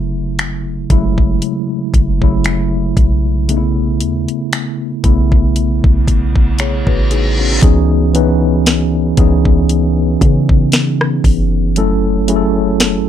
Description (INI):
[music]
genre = contemporary R&B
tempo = 58 BPM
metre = 4/4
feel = swing 54% on 16ths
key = C# minor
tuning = A4 = 440 Hz
[part]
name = mellow tine electric piano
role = accompaniment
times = 0.0-13.1 s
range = C#3 to C#5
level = -15 LUFS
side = left 1 dB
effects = medium stereo tremolo
[part]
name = warm 808-style bass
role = bass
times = 0.0-13.1 s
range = F#1 to C#3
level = -16 LUFS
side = equal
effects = none
[part]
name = trap drum kit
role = drums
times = 0.4-13.1 s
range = finger snaps, hi-hat, kick drum, rim click, snare drum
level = -13 LUFS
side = equal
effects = vintage 12-bit sampler grit
[part]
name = reverse cymbal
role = sound effects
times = 6.3-7.6 s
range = none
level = -23 LUFS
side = left 2 dB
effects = none
[sound]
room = little or no reverb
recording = none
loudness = -11 LUFS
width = side -10 dB against mid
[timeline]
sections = 0.0-7.6 A section; 7.6-13.1 B section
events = reverse cymbal 6.3-7.6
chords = 0.0 F#m7; 3.5 B9sus4; 7.6 C#m9; 11.8 F#m7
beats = 0.38 1.42 2.45 | 3.49 4.52 5.56 6.59 | 7.62 8.66 9.69 10.73 | 11.76 12.80